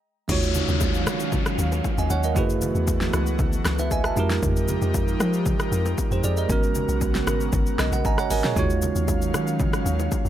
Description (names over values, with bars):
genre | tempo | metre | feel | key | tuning
amapiano | 116 BPM | 4/4 | straight | Eb minor | A4 = 444 Hz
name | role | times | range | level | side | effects
bell-like tine electric piano | accompaniment | 0.3-10.3 s | Ab3 to Bb5 | -26 LUFS | right 5 dB | none
airy breathy pad | sustained chords | 0.3-10.3 s | Db3 to F5 | -30 LUFS | equal | chorus, sidechain pumping
deep log drum bass | bass | 0.3-10.3 s | Ab1 to F3 | -25 LUFS | left 1 dB | none
deep house drum kit | drums | 0.3-10.3 s | crash cymbal, hi-hat, kick drum, rim click, shaker, snare drum, toms | -26 LUFS | left 1 dB | none
congas and bongos | percussion | 0.3-10.2 s | none | -34 LUFS | left 2 dB | none
downlifter | sound effects | 0.3-4.4 s | none | -32 LUFS | left 3 dB | none
room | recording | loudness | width
digital ambience | none | -20 LUFS | side -11 dB against mid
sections
0.3-10.3 A section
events
stop 0.0; drop 0.3-10.3; tine electric piano fill 7.5-8.6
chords
0.3 Ebm11; 2.4 Gbm11; 4.2 Fm11; 6.5 Abm11; 8.6 Ebm11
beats
| 0.29 0.81 1.32 1.84 | 2.36 2.88 3.39 3.91 | 4.43 4.95 5.46 5.98 | 6.50 7.01 7.53 8.05 | 8.56 9.08 9.60 10.12